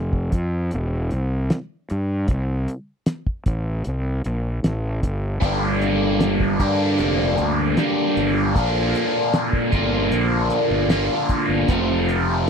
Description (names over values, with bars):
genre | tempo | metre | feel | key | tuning
psychedelic rock | 76 BPM | 4/4 | straight | G minor | A4 = 440 Hz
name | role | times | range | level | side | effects
fuzz fingered electric bass | bass | 0.0-12.5 s | E1 to G2 | -23 LUFS | equal | overdrive
cloth-damped thuddy drum kit | drums | 0.1-12.5 s | hi-hat, kick drum, snare drum | -21 LUFS | equal | none
cranked stack guitar | riff | 5.4-12.5 s | F2 to G4 | -19 LUFS | equal | overdrive, phaser
room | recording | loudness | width
little or no reverb | dry, close 1970s-style studio recording | -19 LUFS | side -6 dB against mid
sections
0.0-12.5 A section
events
none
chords
0.0 F5; 2.3 C5; 5.4 Gm; 8.6 Bb6; 11.7 F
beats
0.72 1.51 | 2.29 3.08 3.86 4.64 | 5.43 6.21 7.00 7.78 | 8.56 9.35 10.13 10.92 | 11.70 12.48